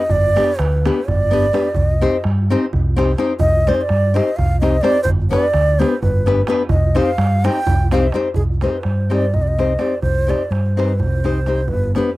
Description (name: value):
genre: balkan folk, Balkan wedding band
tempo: 254 BPM (eighths)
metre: 7/8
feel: straight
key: C harmonic minor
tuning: A4 = 441 Hz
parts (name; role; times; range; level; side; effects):
- breathy ney; melody; 0.0-12.2 s; Ab4 to G5; -20 LUFS; right 1 dB; none
- nylon-string guitar; accompaniment; 0.0-12.1 s; B3 to C5; -18 LUFS; left 3 dB; none
- fingered electric bass; bass; 0.1-12.0 s; G1 to G2; -18 LUFS; equal; none
- darbuka; percussion; 0.1-12.1 s; none; -22 LUFS; right 2 dB; none
room: light reverb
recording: dry, close 1970s-style studio recording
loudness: -14 LUFS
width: side -18 dB against mid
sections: 0.0-8.4 A section; 8.4-12.2 B section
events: ney solo 0.0-8.4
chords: 0.0 G; 1.8 Cm; 5.1 G; 6.7 Cm